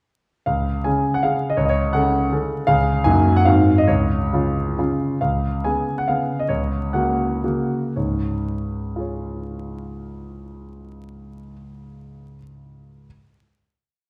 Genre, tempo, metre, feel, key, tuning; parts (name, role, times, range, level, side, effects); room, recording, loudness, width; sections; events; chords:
classical, romantic triple-time dance for piano with dotted rhythms; 108-175 BPM; 3/4; rubato; Db major; A4 = 440 Hz
clear concert grand piano; solo; 0.5-13.1 s; Db2 to Ab5; -21 LUFS; equal
wet recital hall reverb, RT60 1.5 s; heard from further back in the room, vinyl crackle; -20 LUFS; mono
0.5-5.2 A section; 5.2-8.0 coda; 8.0-10.9 final chord
slowing down 4.6-8.0
0.5 Db; 1.6 Gbm/Db; 2.7 Db; 3.1 Ebm/Gb; 3.5 Ab7; 3.9 Db; 5.2 Db7; 6.5 Gb/Db; 8.0 Db